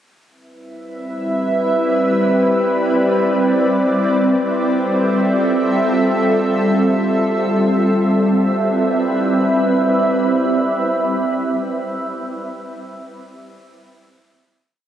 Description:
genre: hip hop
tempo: free time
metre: none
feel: none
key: C major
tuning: A4 = 440 Hz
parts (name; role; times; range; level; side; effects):
- shimmering ambient pad; solo; 0.9-11.6 s; G3 to E5; -15 LUFS; equal; chorus, built-in reverb
room: moderate lush hall reverb, RT60 2.7 s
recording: recorded on a phone in the room, studio reverb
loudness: -14 LUFS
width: side -10 dB against mid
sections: 0.3-8.1 verse; 8.1-12.0 final chord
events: none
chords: 0.3 Cmaj7; 4.2 Fmaj9; 8.1 Cmaj7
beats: free time

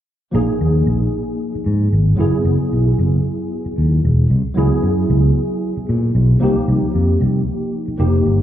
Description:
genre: jazz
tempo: 114 BPM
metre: 4/4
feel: swing 56% on 16ths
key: unclear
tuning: A4 = 440 Hz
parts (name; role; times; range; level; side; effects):
- barky tine electric piano; accompaniment; 0.3-8.4 s; F3 to Ab4; -19 LUFS; equal; ensemble chorus
- fingered electric bass; bass; 0.3-8.4 s; Fb1 to Bb2; -15 LUFS; equal; none
room: light reverb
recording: live gig heard through the venue's PA, club reverb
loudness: -14 LUFS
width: side -11 dB against mid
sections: 0.3-8.4 A section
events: none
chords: 0.3 Bb7sus4; 2.2 Gb9sus4; 4.6 Dbm7; 6.4 Cm7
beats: | 0.34 0.87 1.40 1.93 | 2.45 2.98 3.51 4.04 | 4.57 5.10 5.62 6.15 | 6.68 7.21 7.73 8.26

